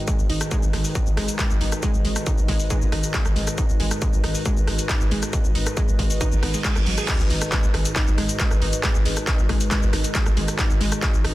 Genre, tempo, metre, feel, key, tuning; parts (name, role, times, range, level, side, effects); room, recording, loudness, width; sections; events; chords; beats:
driving peak-time techno; 137 BPM; 4/4; straight; G# minor; A4 = 440 Hz
analog drone; drone; 0.0-11.3 s; G#2 to D#3; -32 LUFS; left 1 dB; chorus, sidechain pumping
warbly tape-like pad; texture; 0.0-11.3 s; F#4 to D#5; -34 LUFS; equal; chorus, built-in reverb, sidechain pumping
wide unison pluck; riff; 0.1-11.3 s; F#3 to G#4; -30 LUFS; right 1 dB; sidechain pumping, digital delay
electronic kick drum; drums; 0.1-11.1 s; -22 LUFS; equal; distortion
techno drum kit; drums; 0.1-11.3 s; crash cymbal, handclaps, hi-hat, rim click, shaker; -27 LUFS; equal; sidechain pumping on hats, sidechain pumping on perc, sidechain pumping on cymbals
growling 808-style bass; bass; 0.2-11.3 s; G#1; -28 LUFS; equal; tube saturation, sidechain pumping, low-pass filter
reverse cymbal and sub drop; sound effects; 6.4-8.8 s; -34 LUFS; right 2 dB
digital ambience; dense, heavily limited modern master; -19 LUFS; side -16 dB against mid
0.0-7.1 A section; 7.1-11.3 B section
reverse cymbal 6.4-7.1; drop 7.1-11.3; impact 7.1-8.8
0.0 G#m
| 0.08 0.52 0.95 1.39 | 1.83 2.27 2.70 3.14 | 3.58 4.02 4.46 4.89 | 5.33 5.77 6.21 6.65 | 7.08 7.52 7.96 8.40 | 8.84 9.27 9.71 10.15 | 10.59 11.03